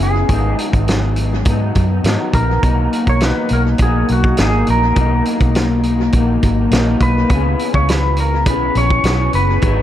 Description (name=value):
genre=indie pop, bedroom pop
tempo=103 BPM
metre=4/4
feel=straight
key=unclear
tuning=A4 = 441 Hz
part: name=clean lap steel guitar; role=melody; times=0.0-9.8 s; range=F#4 to C#5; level=-21 LUFS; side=equal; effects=lush chorus, tape echo
part: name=electric guitar through a small old amp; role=accompaniment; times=0.0-9.8 s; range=G#2 to G#4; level=-19 LUFS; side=left 2 dB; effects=analog chorus, vibrato effect, tape echo
part: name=vintage muted fingered electric bass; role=bass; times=0.0-9.8 s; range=F#1 to G#2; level=-17 LUFS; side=equal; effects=none
part: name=loose indie drum kit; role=drums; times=0.3-9.8 s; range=hi-hat, kick drum, snare drum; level=-19 LUFS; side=equal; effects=tape echo
room=moderate spring reverb, RT60 2.3 s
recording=echo-heavy mix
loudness=-13 LUFS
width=side -11 dB against mid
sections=0.0-9.8 A section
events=none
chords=0.3 G#m7; 7.3 C#m7